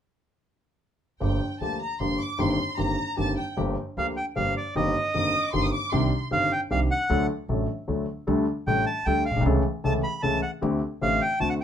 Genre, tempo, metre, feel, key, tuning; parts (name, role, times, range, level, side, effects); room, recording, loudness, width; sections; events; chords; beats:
tango; 153 BPM; 3/4; rubato; G minor; A4 = 436 Hz
rich studio violin section; second line; 1.2-6.2 s; G5 to Eb6; -30 LUFS; left 1 dB
warm baby grand piano; accompaniment; 1.2-11.6 s; G1 to A4; -26 LUFS; left 2 dB
upright bass; bass; 1.2-11.6 s; G1 to D2; -30 LUFS; right 2 dB
bandoneon; melody; 4.0-11.6 s; D5 to B5; -26 LUFS; right 1 dB
moderate studio ambience, RT60 0.5 s; minimal, uncompressed stereo recording; -23 LUFS; side -9 dB against mid
1.2-3.6 A section; 3.6-11.6 B section
1.2 Gm7; 2.4 Eb6/G; 3.6 Gm7; 4.8 Eb6/G; 5.9 Cmadd9; 7.1 D; 8.3 Dsus4; 9.5 A/C#; 10.6 D7sus4
| 1.21 1.60 2.00 | 2.39 2.78 3.17 | 3.57 3.97 4.36 | 4.75 5.14 5.54 | 5.92 6.32 6.71 | 7.10 7.49 7.88 | 8.27 8.67 9.06 | 9.45 9.84 10.23 | 10.62 11.01 11.40